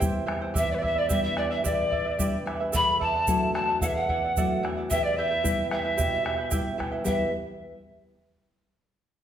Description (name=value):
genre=andean folk, Andean ensemble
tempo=111 BPM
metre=2/4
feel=straight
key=E minor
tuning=A4 = 441 Hz
part: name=charango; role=accompaniment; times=0.0-7.3 s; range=E4 to G5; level=-32 LUFS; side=right 3 dB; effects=none
part: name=nylon-string guitar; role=accompaniment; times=0.0-7.3 s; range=E2 to B4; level=-31 LUFS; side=left 2 dB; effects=none
part: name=bombo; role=percussion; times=0.0-7.3 s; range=none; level=-31 LUFS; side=equal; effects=none
part: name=egg shaker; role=percussion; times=0.0-7.3 s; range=none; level=-37 LUFS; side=right 7 dB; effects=none
part: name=bright pan flute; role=melody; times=0.6-7.3 s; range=B4 to B5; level=-27 LUFS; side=right 1 dB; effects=none
part: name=breathy quena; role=second line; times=0.6-7.3 s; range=B4 to B5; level=-32 LUFS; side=left 3 dB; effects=none
room=wet recital hall reverb, RT60 1.4 s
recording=none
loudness=-24 LUFS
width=side -10 dB against mid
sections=0.0-7.1 A section; 7.1-8.1 B section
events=none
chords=0.0 C/E; 0.6 G/E; 2.7 D/E; 4.9 Em